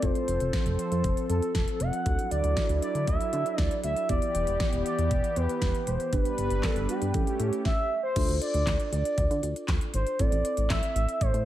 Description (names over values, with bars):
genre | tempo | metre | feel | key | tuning
synth-pop | 118 BPM | 4/4 | straight | A minor | A4 = 440 Hz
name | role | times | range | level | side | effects
expressive synth lead | melody | 0.0-11.4 s | G4 to F#5 | -30 LUFS | equal | chorus, diffuse ambient delay
muted felt-like synth keys | accompaniment | 0.0-11.4 s | B3 to A4 | -36 LUFS | equal | chorus
warm analog pad | sustained chords | 0.0-7.6 s | E3 to B4 | -34 LUFS | right 2 dB | chorus
chorused synth bass | bass | 0.0-11.4 s | E1 to D3 | -29 LUFS | equal | none
pop drum kit | drums | 0.0-11.4 s | crash cymbal, handclaps, hi-hat, kick drum, snare drum | -29 LUFS | equal | none
room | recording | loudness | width
moderate plate reverb, RT60 1.2 s | dreamy mix soaked in reverb | -25 LUFS | side -13 dB against mid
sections
0.0-8.2 A section; 8.2-11.4 B section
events
none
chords
0.0 F; 2.1 Dadd9; 4.1 Em; 6.1 G; 7.1 A7; 8.2 Dm; 10.2 Am